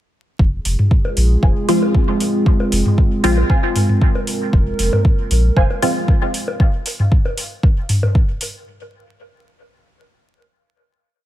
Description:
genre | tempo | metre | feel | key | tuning
dub techno | 116 BPM | 4/4 | swing 53% on 16ths | F minor | A4 = 437 Hz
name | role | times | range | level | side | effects
dark analog pad | sustained chords | 0.8-6.6 s | Ab3 to Bb4 | -22 LUFS | right 1 dB | chorus, vintage 12-bit sampler grit, sidechain pumping
warm sub bass | bass | 0.4-5.7 s | F1 to Bb1 | -16 LUFS | equal | sidechain pumping
electronic kick drum | drums | 0.4-8.3 s | none | -14 LUFS | equal | none
electronic hi-hat | drums | 0.7-8.5 s | none | -26 LUFS | right 1 dB | none
electronic toms and bongos | percussion | 0.8-8.1 s | none | -20 LUFS | left 1 dB | sidechain pumping on toms, sidechain pumping on perc, dub echo
filtered dub chord stab | riff | 1.4-5.6 s | C5 to Ab5 | -27 LUFS | right 2 dB | ensemble chorus, sidechain pumping, dub echo
filtered dub chord stab | stabs | 1.7-6.9 s | F3 to F4 | -21 LUFS | equal | phaser, cassette tape, dub echo
room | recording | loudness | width
light reverb, digital ambience | vinyl crackle | -14 LUFS | side -13 dB against mid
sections
0.4-8.7 groove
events
none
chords
0.4 Fm

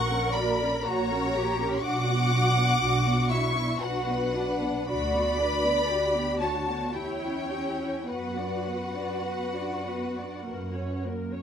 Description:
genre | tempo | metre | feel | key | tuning
classical, slow romantic movement for string orchestra | 50-62 BPM | 3/4 | rubato | B minor | A4 = 439 Hz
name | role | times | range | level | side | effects
warm symphonic violin section | melody | 0.0-11.0 s | F#5 to D6 | -31 LUFS | left 2 dB | none
warm symphonic violin section | second line | 0.0-11.0 s | B4 to F#5 | -30 LUFS | left 1 dB | none
warm symphonic viola section | accompaniment | 0.0-11.4 s | A#3 to D5 | -32 LUFS | right 1 dB | none
rich symphonic cello section | bass | 0.0-11.0 s | C#4 to B4 | -34 LUFS | right 1 dB | none
warm symphonic double bass section | bass | 0.0-11.4 s | A#1 to F#2 | -31 LUFS | right 2 dB | none
room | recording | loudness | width
moderate large studio reverb, RT60 1.3 s | none | -25 LUFS | side -8 dB against mid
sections
0.0-11.4 A section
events
none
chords
0.0 F#/A#; 1.8 Bm; 4.9 Bm/D; 7.0 C#dim/E; 8.1 Bm/F#; 10.5 F#

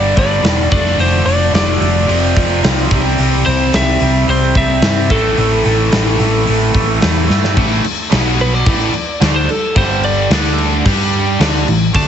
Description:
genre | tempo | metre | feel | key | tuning
hard rock | 110 BPM | 4/4 | straight | A minor | A4 = 440 Hz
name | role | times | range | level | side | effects
lightly driven lead guitar | melody | 0.0-12.1 s | A4 to A5 | -18 LUFS | equal | none
biting overdriven guitar | riff | 0.0-12.1 s | F2 to G4 | -20 LUFS | right 12 dB | phaser
distorted electric guitar | riff | 0.0-12.1 s | F2 to G4 | -21 LUFS | left 13 dB | distortion
distorted electric guitar | riff | 0.0-12.1 s | G2 to G4 | -20 LUFS | equal | distortion
hollow-body short-scale fingered electric bass | bass | 0.0-12.1 s | E1 to G2 | -17 LUFS | equal | none
big rock drum kit | drums | 0.2-12.1 s | crash cymbal, hi-hat, kick drum, snare drum | -17 LUFS | equal | none
room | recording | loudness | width
light reverb, small room ambience | heavily compressed radio sound, multiband compression, nothing above 8.0 kHz | -11 LUFS | side -9 dB against mid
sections
0.0-7.6 A section; 7.6-12.1 B section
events
drum fill 7.3; lead electric guitar solo 7.6-12.1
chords
0.0 G; 0.7 Dm/F; 2.1 F; 2.9 C; 5.1 Am; 7.6 A5; 8.1 B5; 8.7 A5; 9.8 G5; 10.3 D5; 10.8 G5; 11.4 A5

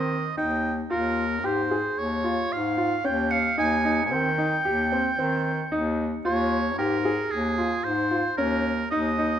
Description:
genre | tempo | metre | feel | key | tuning
contemporary instrumental, chamber music in an uneven meter | 112 BPM | 5/4 | straight | unclear | A4 = 440 Hz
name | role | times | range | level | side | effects
clear oboe | melody | 0.0-9.4 s | Ab4 to Ab5 | -27 LUFS | right 3 dB | none
warm baby grand piano | arpeggios | 0.0-9.3 s | C4 to Ab4 | -28 LUFS | left 1 dB | none
clear bass clarinet | bass | 0.0-9.4 s | Eb2 to Eb3 | -28 LUFS | left 2 dB | none
crotales | texture | 3.3-3.8 s | Db7 | -32 LUFS | right 4 dB | none
room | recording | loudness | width
moderate recital hall reverb, RT60 1.7 s | faint mains hum | -22 LUFS | side -9 dB against mid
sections
0.0-9.4 A section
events
none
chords
0.0 Eb6; 0.9 Db6/Eb; 3.6 Eb6; 6.3 Db6/Eb (rootless)

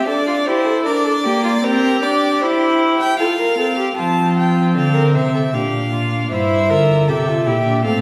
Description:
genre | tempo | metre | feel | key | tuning
classical, baroque-style fugue for string quartet | 77 BPM | 3/4 | straight | F major | A4 = 437 Hz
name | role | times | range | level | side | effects
rich violin | melody | 0.0-8.0 s | Bb4 to A5 | -23 LUFS | equal | none
dark violin | second line | 0.0-8.0 s | F4 to C5 | -24 LUFS | equal | none
warm viola | accompaniment | 0.0-8.0 s | Bb3 to G4 | -22 LUFS | equal | none
warm cello | bass | 4.0-8.0 s | G2 to F3 | -20 LUFS | equal | none
room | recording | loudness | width
wet recital hall reverb, RT60 1.5 s | heard from further back in the room | -17 LUFS | mono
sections
0.0-4.0 A section; 4.0-8.0 B section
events
none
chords
0.0 F (rootless); 0.9 Bb/D; 1.6 C7; 3.2 F5; 4.0 F; 5.5 Bb; 6.3 Edim/G

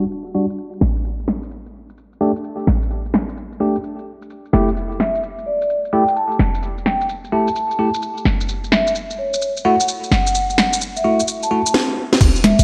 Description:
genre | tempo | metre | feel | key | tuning
UK garage, two-step garage | 129 BPM | 4/4 | swing 65% on 16ths | unclear | A4 = 439 Hz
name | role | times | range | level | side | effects
bell-like tine electric piano | stabs | 0.0-11.6 s | G3 to G4 | -24 LUFS | equal | subtle chorus, digital delay
short 808-style bass | bass | 0.0-12.6 s | D1 to A1 | -22 LUFS | equal | none
garage drum kit | drums | 0.0-12.6 s | congas, crash cymbal, hi-hat, shaker, snare drum | -21 LUFS | equal | gated reverb
vibraphone with soft mallets | melody | 5.0-12.6 s | C#5 to A5 | -23 LUFS | equal | digital delay
electronic kick drum | drums | 12.2-12.3 s | none | -15 LUFS | equal | none
room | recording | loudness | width
moderate plate reverb, RT60 2.3 s | bright 1980s-style digital production, low-pass filter | -19 LUFS | mono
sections
0.0-12.2 A section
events
filter sweep 0.0-12.2; drum fill 11.7-12.2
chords
0.0 Em9; 0.8 N.C.; 4.5 Fmaj9; 8.3 N.C.

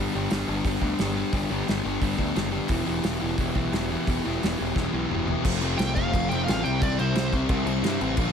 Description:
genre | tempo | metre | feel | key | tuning
punk rock | 175 BPM | 4/4 | straight | G major | A4 = 441 Hz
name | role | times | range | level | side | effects
crunchy overdriven guitar | riff | 0.0-8.3 s | E2 to C4 | -30 LUFS | right 13 dB | none
sludgy distorted guitar | riff | 0.0-8.3 s | F2 to G4 | -28 LUFS | left 13 dB | overdrive
growling picked electric bass | bass | 0.0-8.3 s | E1 to G2 | -30 LUFS | equal | overdrive
loose indie drum kit | drums | 0.3-8.3 s | crash cymbal, hi-hat, kick drum, snare drum, toms | -29 LUFS | equal | none
high-gain lead guitar | melody | 5.8-7.3 s | C5 to G5 | -31 LUFS | right 3 dB | distortion, tape echo
room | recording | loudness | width
light reverb | none | -23 LUFS | side -7 dB against mid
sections
0.0-5.4 A section; 5.4-8.3 B section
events
drum fill 4.8-5.4; lead electric guitar solo 5.4-8.3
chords
0.0 G; 2.7 Em; 5.4 F; 6.6 C

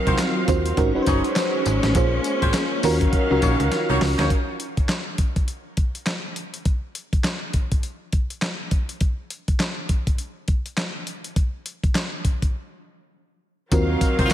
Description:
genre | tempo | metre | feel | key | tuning
R&B, new jack swing | 102 BPM | 4/4 | swing 60% on 16ths | Eb dorian | A4 = 444 Hz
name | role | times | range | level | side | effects
mellow FM electric piano | accompaniment | 0.0-4.3, 13.7-14.3 s | C4 to C5 | -23 LUFS | right 2 dB | chorus, shimmer reverb, slapback echo
rich symphonic string section | sustained chords | 0.0-4.3, 13.7-14.3 s | Eb3 to F5 | -27 LUFS | left 1 dB | shimmer reverb
warm horn section | stabs | 0.1-4.3, 14.2-14.3 s | C4 to Db5 | -29 LUFS | left 2 dB | shimmer reverb
slap-like FM bass | bass | 0.1-4.3, 13.7-14.3 s | Gb1 to Eb2 | -23 LUFS | equal | none
dusty soul sampler-style drum kit | drums | 0.1-14.3 s | handclaps, hi-hat, kick drum, snare drum, tambourine | -22 LUFS | equal | none
raspy tenor saxophone | melody | 14.3 s | F4 | -32 LUFS | equal | none
room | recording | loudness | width
light reverb, small room ambience | none | -20 LUFS | side -11 dB against mid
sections
0.0-4.3 A section; 4.3-13.7 B section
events
drum fill 3.7-4.3; break 12.5-13.7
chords
0.0 Ebm69; 0.8 Ab7sus4; 2.0 Bbm9; 2.8 Ebm9; 4.3 N.C.; 13.7 Ebm69

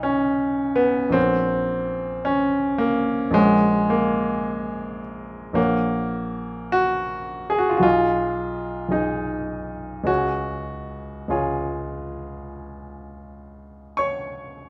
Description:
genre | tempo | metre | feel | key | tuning
classical, romantic nocturne for solo piano | 41-56 BPM | 4/4 | rubato | unclear | A4 = 440 Hz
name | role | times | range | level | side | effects
clear baby grand piano | solo | 0.0-14.7 s | Bb1 to C#6 | -23 LUFS | equal | none
room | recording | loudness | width
moderate recital hall reverb, RT60 1.6 s | close, detailed microphones | -23 LUFS | mono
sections
0.0-14.7 A section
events
none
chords
0.0 Db7/Cb; 1.2 Gb/Bb; 7.8 G#m/B; 10.1 C#

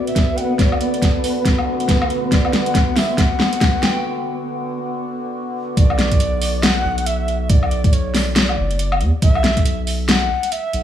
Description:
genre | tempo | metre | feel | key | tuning
deep dubstep | 139 BPM | 4/4 | swing 60% on 16ths, half-time | B minor | A4 = 440 Hz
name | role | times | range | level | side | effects
breathy reedy low ney | melody | 0.0-10.8 s | C#5 to G5 | -24 LUFS | left 1 dB | dub echo
overtone-sweeping drone | sustained chords | 0.0-5.7 s | D3 to F#4 | -25 LUFS | equal | chorus, built-in reverb
flickering grainy texture | texture | 0.0-4.0 s | B3 to B4 | -25 LUFS | right 1 dB | built-in reverb
dubstep drum kit | drums | 0.1-10.8 s | hi-hat, snare drum, woodblock | -20 LUFS | left 1 dB | none
electronic kick drum | drums | 0.2-9.6 s | none | -16 LUFS | equal | none
saturated sub bass | bass | 5.8-10.8 s | F#1 to E2 | -20 LUFS | equal | none
room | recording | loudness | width
light reverb | small room ambience | -15 LUFS | side -10 dB against mid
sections
0.0-5.8 A section; 5.8-10.8 B section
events
build-up 0.0-5.8; drum fill 0.0-4.0; break 4.0-5.8; drop 5.8-10.8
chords
0.0 Bm

